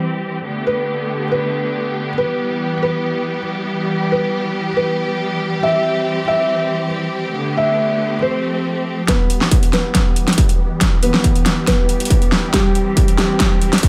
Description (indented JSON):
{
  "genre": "heavy wobble dubstep",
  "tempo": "139 BPM",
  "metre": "4/4",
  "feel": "half-time",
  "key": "E phrygian",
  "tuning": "A4 = 437 Hz",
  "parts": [
    { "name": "rich symphonic string section", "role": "sustained chords", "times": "0.0-13.9 s", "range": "D3 to G4", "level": "-23 LUFS", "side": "equal", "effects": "sidechain pumping, low-pass filter" },
    { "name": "felt-muted upright piano", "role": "melody", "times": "0.7-13.7 s", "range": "G3 to E5", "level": "-23 LUFS", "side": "equal", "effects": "none" },
    { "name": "dubstep drum kit", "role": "drums", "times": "9.1-13.9 s", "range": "hi-hat, snare drum", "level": "-20 LUFS", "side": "equal", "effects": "studio reverb" },
    { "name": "electronic kick drum", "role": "drums", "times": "9.1-13.9 s", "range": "none", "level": "-18 LUFS", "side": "equal", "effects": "distortion, studio reverb" }
  ],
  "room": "light reverb",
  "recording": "none",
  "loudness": "-18 LUFS",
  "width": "mono",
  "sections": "0.0-9.1 A section; 9.1-13.9 B section",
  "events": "build-up 9.1-13.9; drum fill 9.1-13.9; filter sweep on string section 9.1-13.9",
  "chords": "0.5 Gadd9; 2.2 Em; 5.6 C/E; 7.4 Gadd9; 8.2 Fadd9; 9.1 Em; 12.5 C/E"
}